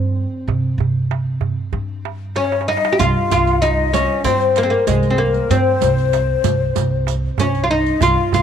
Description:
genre	Arabic maqam ensemble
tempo	96 BPM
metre	4/4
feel	straight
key	C maqam kurd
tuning	A4 = 439 Hz
part	oud	melody	0.0-8.4 s	Ab3 to G4	-18 LUFS	left 1 dB	none
part	upright bass	bass	0.0-8.4 s	C2 to C3	-21 LUFS	right 1 dB	none
part	darbuka	percussion	0.5-8.4 s	none	-23 LUFS	right 6 dB	none
part	breathy ney	second line	2.4-8.4 s	Ab4 to F5	-21 LUFS	left 12 dB	none
part	riq	percussion	3.0-8.4 s	none	-26 LUFS	right 15 dB	none
room	light reverb, small room ambience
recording	1960s-style stereo with parts hard left and right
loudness	-15 LUFS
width	side -8 dB against mid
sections	0.0-3.0 A section; 3.0-8.4 B section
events	drum fill 2.4-3.0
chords	none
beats	| 0.49 1.12 1.74 2.37 | 3.00 3.62 4.25 4.88 | 5.50 6.13 6.76 7.39 | 8.01

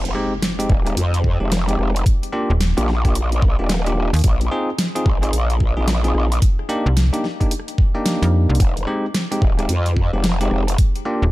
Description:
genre	glitch hop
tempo	110 BPM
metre	4/4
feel	swing 62% on 16ths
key	F dorian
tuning	A4 = 438 Hz
part	growl bass	bass	0.0-10.8 s	Eb1 to F2	-19 LUFS	equal	chorus, tube saturation
part	impact	sound effects	0.0-2.1 s	none	-34 LUFS	equal	none
part	bell-like tine electric piano	stabs	0.1-11.2 s	Ab3 to Ab4	-24 LUFS	equal	sidechain pumping, ping-pong delay
part	dubstep drum kit	drums	0.1-11.0 s	hi-hat, rim click, snare drum	-25 LUFS	equal	small room ambience
part	electronic kick drum	drums	0.7-10.9 s	none	-17 LUFS	equal	small room ambience
part	slap-like FM bass	bass	2.5-11.3 s	Eb1 to F2	-15 LUFS	equal	tube saturation
room	little or no reverb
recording	dark, warm production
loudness	-16 LUFS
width	side -18 dB against mid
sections	0.0-11.3 A section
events	impact 0.0-2.1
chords	0.0 Fm7; 2.1 Ebmaj7; 4.2 Bb9sus4; 6.4 Cm7; 8.6 Fm7; 10.8 Ebmaj7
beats	0.42 0.97 1.51 | 2.06 2.60 3.15 3.69 | 4.24 4.79 5.33 5.88 | 6.42 6.97 7.51 8.06 | 8.60 9.15 9.69 10.24 | 10.79

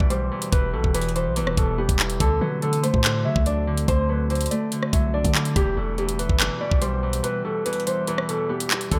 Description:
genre	hip hop, drill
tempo	143 BPM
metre	4/4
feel	half-time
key	E minor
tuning	A4 = 440 Hz
part	dark grand piano	melody	0.0-9.0 s	G4 to E5	-29 LUFS	equal	subtle chorus, low-pass filter, tape echo
part	Celtic harp	accompaniment	0.0-9.0 s	E2 to D4	-30 LUFS	equal	low-pass filter
part	glassy FM pad	sustained chords	0.0-8.9 s	B2 to G4	-36 LUFS	equal	ensemble chorus, built-in reverb
part	long sustained 808-style bass	bass	0.0-9.0 s	E1 to D3	-29 LUFS	equal	none
part	drill drum kit	drums	0.0-9.0 s	handclaps, hi-hat, kick drum, rim click	-25 LUFS	equal	none
room	light reverb, digital ambience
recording	none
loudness	-23 LUFS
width	mono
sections	0.0-8.9 A section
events	kick muted 7.2-8.9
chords	0.0 Em; 2.2 D7; 5.6 Em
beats	0.11 | 0.53 0.94 1.36 1.78 | 2.20 2.62 3.04 3.46 | 3.88 4.30 4.72 5.14 | 5.56 5.98 6.40 6.82 | 7.24 7.66 8.08 8.50 | 8.92

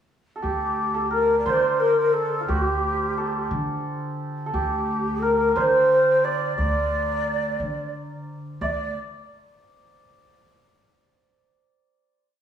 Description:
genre	Persian modal ensemble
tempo	59 BPM (dotted quarters)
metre	6/8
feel	straight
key	D dastgah shur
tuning	A4 = 438 Hz
part	breathy mellow ney	melody	0.4-8.9 s	G4 to E5	-22 LUFS	equal	none
part	santur	second line	0.4-8.9 s	F4 to D5	-28 LUFS	right 3 dB	none
part	upright bass	bass	0.4-8.9 s	D2 to D3	-30 LUFS	equal	none
room	wet stone room reverb, RT60 1.3 s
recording	band playing live in one room, studio ambience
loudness	-20 LUFS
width	side -9 dB against mid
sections	0.0-0.4 pickup bar; 0.4-8.6 A section; 8.6-10.7 final note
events	none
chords	none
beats	| 0.44 1.46 | 2.48 3.51 | 4.53 5.55 | 6.58 7.60 | 8.62

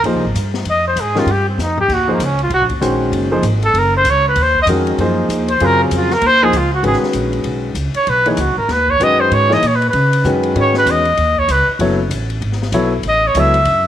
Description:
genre	modal jazz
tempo	194 BPM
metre	4/4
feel	swing 62% on 8ths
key	G# phrygian from 6.8 s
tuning	A4 = 440 Hz
part	mellow trumpet	melody	0.0-13.9 s	Bb3 to E5	-14 LUFS	equal	none
part	upright bass	bass	0.0-13.9 s	Gb1 to C#3	-19 LUFS	equal	none
part	open jazz drum kit	drums	0.0-13.7 s	crash cymbal, hi-hat, kick drum, ride cymbal, snare drum, toms	-28 LUFS	left 5 dB	none
part	warm concert grand piano	accompaniment	0.1-13.5 s	Db3 to C#5	-18 LUFS	left 1 dB	none
room	light reverb, small room ambience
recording	1960s-style stereo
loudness	-12 LUFS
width	side -11 dB against mid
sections	0.0-6.8 A section; 6.8-13.9 A section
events	trumpet solo 0.0-13.9; drum fill 1.6-1.9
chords	0.0 Fm9; 1.9 Ebm9; 6.8 G#m11; 11.8 F#m11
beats	0.05 0.36 | 0.66 0.97 1.28 1.59 | 1.90 2.21 2.51 2.82 | 3.13 3.44 3.75 4.05 | 4.36 4.67 4.98 5.29 | 5.60 5.91 6.21 6.53 | 6.83 7.14 7.45 7.76 | 8.07 8.38 8.69 9.01 | 9.31 9.63 9.94 10.25 | 10.56 10.87 11.18 11.49 | 11.80 12.11 12.42 12.73 | 13.04 13.36 13.67

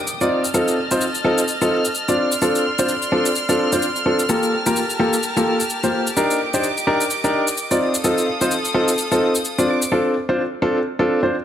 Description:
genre	piano house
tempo	128 BPM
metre	4/4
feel	swing 58% on 16ths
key	unclear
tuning	A4 = 440 Hz
part	warm studio violin section	sustained chords	0.0-9.9 s	G4 to F6	-24 LUFS	equal	low-pass filter
part	downlifter	sound effects	0.0-0.5 s	none	-42 LUFS	equal	none
part	shaker	drums	0.1-9.9 s	none	-26 LUFS	left 2 dB	none
part	clear grand piano	riff	0.2-11.3 s	Bb3 to D5	-18 LUFS	equal	tape echo
room	light reverb, digital ambience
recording	none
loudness	-17 LUFS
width	side -10 dB against mid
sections	0.0-11.4 A section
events	none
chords	0.3 F7; 2.2 Dm7; 4.3 Gm9; 6.2 Ebmaj7; 7.8 F7; 9.7 Dm7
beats	0.07 | 0.54 1.01 1.48 1.95 | 2.42 2.88 3.35 3.82 | 4.29 4.76 5.23 5.70 | 6.17 6.63 7.10 7.57 | 8.04 8.51 8.98 9.45 | 9.92 10.38 10.85 11.32

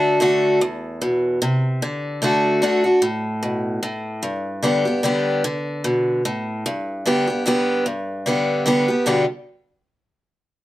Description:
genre	bluegrass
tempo	149 BPM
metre	3/4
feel	swing 55% on 8ths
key	G major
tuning	A4 = 438 Hz
part	picked acoustic archtop guitar	solo	0.0-9.2 s	E2 to G4	-18 LUFS	equal	none
room	moderate studio reverb, RT60 0.6 s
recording	dark, warm production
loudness	-18 LUFS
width	side -15 dB against mid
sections	0.0-7.9 A section; 7.9-9.1 B section; 9.1-10.3 C section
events	none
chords	0.0 D; 0.6 E5; 1.8 D; 4.2 G; 5.4 D5; 6.7 G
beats	0.20 | 0.61 1.01 1.41 | 1.82 2.22 2.62 | 3.02 3.43 3.83 | 4.23 4.64 5.04 | 5.44 5.84 6.25 | 6.65 7.05 7.46 | 7.86 8.26 8.66 | 9.07

